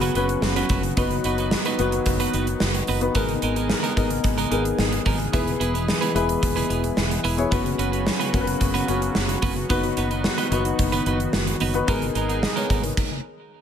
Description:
1980s-style pop; 110 BPM; 4/4; straight; B major; A4 = 440 Hz
dark baby grand piano; accompaniment; 0.0-13.1 s; B3 to D#5; -26 LUFS; left 6 dB
chorused pulse-width pad; sustained chords; 0.0-13.0 s; C#3 to A#4; -30 LUFS; equal
clean electric guitar; riff; 0.0-12.9 s; F#3 to B4; -28 LUFS; right 7 dB; wide subtle chorus, tape echo
fingered electric bass; bass; 0.0-12.9 s; E1 to G#1; -27 LUFS; equal
gated 80s drum kit; drums; 0.0-13.1 s; crash cymbal, hi-hat, kick drum, snare drum; -25 LUFS; right 1 dB; gated reverb
light reverb, small room ambience; -20 LUFS; side -8 dB against mid
0.0-13.6 A section
stop 13.0-13.6
0.0 F#sus4; 1.0 B/F#; 3.2 G#madd9; 5.3 E; 7.5 F#sus4; 9.7 B/F#; 11.9 G#madd9; 13.0 N.C.
0.43 | 0.97 1.52 2.06 2.61 | 3.15 3.70 4.24 4.79 | 5.33 5.88 6.43 6.97 | 7.52 8.06 8.61 9.15 | 9.70 10.24 10.79 11.34 | 11.88 12.43 12.97

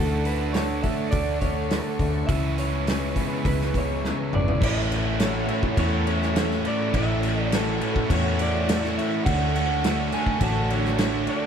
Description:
rock, shoegaze and dream pop; 104 BPM; 4/4; straight; A major; A4 = 440 Hz
electric guitar through a small old amp; melody; 0.0-11.5 s; A4 to A5; -30 LUFS; right 2 dB; diffuse ambient delay
string machine, violas; sustained chords; 0.0-11.5 s; D4 to C#6; -35 LUFS; left 1 dB; ensemble chorus
electric guitar through a small old amp; arpeggios; 0.0-11.5 s; E3 to F#4; -35 LUFS; left 1 dB; wide subtle chorus, diffuse ambient delay
overdriven electric guitar; riff; 0.0-11.5 s; A2 to F#4; -30 LUFS; right 9 dB; reverse reverb
thick fuzz guitar; riff; 0.0-11.5 s; A2 to D4; -31 LUFS; left 9 dB; distortion, wide subtle chorus
vintage muted fingered electric bass; bass; 0.0-11.3 s; G#1 to E2; -27 LUFS; equal
loose indie drum kit; drums; 0.3-11.4 s; crash cymbal, hi-hat, kick drum, snare drum, toms; -27 LUFS; equal
overdriven electric guitar; riff; 4.6-11.5 s; A2 to F#4; -32 LUFS; equal
light reverb, studio reverb; -21 LUFS; side -7 dB against mid
0.0-4.6 A section; 4.6-11.5 B section
drum fill 4.0-4.6
0.0 Dmaj7; 2.3 C#m7; 4.6 A6; 9.3 Dmaj7
0.56 1.14 1.72 | 2.30 2.88 3.46 4.04 | 4.62 5.20 5.78 6.36 | 6.94 7.52 8.09 8.67 | 9.25 9.83 10.41 10.98

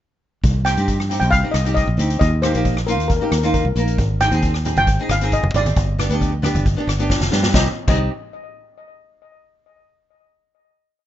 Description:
calypso; 135 BPM; 4/4; straight; C minor; A4 = 441 Hz
fingered electric bass; bass; 0.4-8.1 s; F1 to G2; -19 LUFS; equal
street-band drum kit; drums; 0.4-8.0 s; crash cymbal, hi-hat, kick drum, rim click, snare drum; -22 LUFS; equal
steel pan; melody; 0.6-8.1 s; Bb4 to G5; -23 LUFS; left 1 dB; plate reverb, tape echo
nylon-string guitar; accompaniment; 0.6-8.1 s; Bb3 to Bb4; -24 LUFS; equal; double-tracked left and right, plate reverb
congas; percussion; 4.2-8.1 s; -26 LUFS; right 1 dB
little or no reverb; rough home demo mix, nothing above 7.7 kHz; -16 LUFS; side -12 dB against mid
0.4-7.5 verse; 7.5-9.3 final chord
drum fill 7.1-7.5
0.4 Cm; 2.2 Eb; 4.0 Ab; 5.8 G; 7.5 Cm
| 0.44 0.88 1.32 1.77 | 2.21 2.65 3.10 3.54 | 3.99 4.43 4.88 5.32 | 5.76 6.21 6.65 7.10 | 7.54 7.98

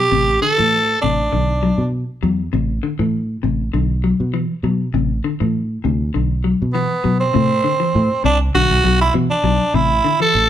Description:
afrobeat; 100 BPM; 4/4; swing 53% on 16ths; A dorian; A4 = 443 Hz
raspy tenor saxophone; melody; 0.0-1.9, 6.7-10.5 s; B3 to A4; -16 LUFS; right 2 dB
fingered electric bass; bass; 0.0-10.5 s; A1 to B2; -19 LUFS; right 1 dB
clean electric guitar; arpeggios; 0.1-10.4 s; C3 to F#3; -21 LUFS; left 5 dB
moderate large studio reverb, RT60 0.9 s; band playing live in one room; -15 LUFS; side -11 dB against mid
0.0-7.3 A section; 7.3-10.5 B section
0.1 Amadd11; 1.3 Bm; 2.5 Am; 3.7 Bm; 4.9 Amadd11; 6.1 Bm; 7.3 Am; 8.5 Bm; 9.7 Am
| 0.11 0.71 1.31 1.92 | 2.52 3.12 3.72 4.33 | 4.93 5.53 6.13 6.73 | 7.33 7.93 8.54 9.14 | 9.74 10.34

